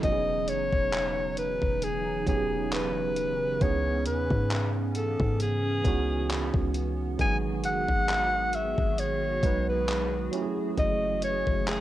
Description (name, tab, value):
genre	contemporary R&B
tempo	67 BPM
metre	4/4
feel	swing 54% on 16ths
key	E major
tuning	A4 = 437 Hz
part	breathy alto saxophone	melody	0.0-11.8 s	G#4 to G#5	-29 LUFS	left 1 dB	cassette tape
part	tine electric piano	accompaniment	0.0-11.8 s	E3 to B4	-32 LUFS	right 7 dB	slow stereo tremolo, cassette tape
part	hollow soft pad	sustained chords	0.0-11.8 s	C#3 to G#4	-36 LUFS	equal	ensemble chorus, cassette tape
part	warm 808-style bass	bass	0.0-11.8 s	E1 to G#2	-32 LUFS	left 1 dB	none
part	detuned 8-bit digital drum machine	drums	0.0-11.8 s	handclaps, hi-hat, kick drum	-31 LUFS	left 1 dB	cassette tape
room	little or no reverb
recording	home recording on cassette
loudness	-25 LUFS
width	side -14 dB against mid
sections	0.0-11.8 A section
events	none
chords	0.0 Emaj13; 3.6 C#m7; 7.2 G#m7; 10.3 F#m9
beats	| 0.03 0.93 1.82 2.72 | 3.61 4.51 5.40 6.30 | 7.20 8.09 8.99 9.88 | 10.78 11.67